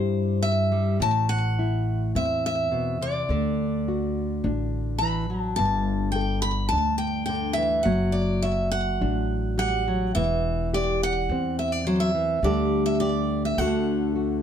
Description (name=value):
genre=folk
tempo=105 BPM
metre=4/4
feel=straight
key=unclear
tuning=A4 = 440 Hz
part: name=picked steel-string acoustic guitar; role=melody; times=0.0-14.4 s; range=C5 to B5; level=-27 LUFS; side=equal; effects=slapback echo
part: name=nylon-string guitar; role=accompaniment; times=0.0-14.4 s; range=G2 to A4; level=-28 LUFS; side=left 2 dB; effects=none
part: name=upright bass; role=bass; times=0.0-14.4 s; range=E1 to G2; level=-26 LUFS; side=right 1 dB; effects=none
room=light reverb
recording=none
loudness=-22 LUFS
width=side -8 dB against mid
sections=0.0-14.4 A section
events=none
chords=0.0 C/G; 1.0 Am; 3.3 D; 5.6 Gsus2; 7.9 D/F#; 10.2 Emadd9; 12.4 Dsus4; 13.6 D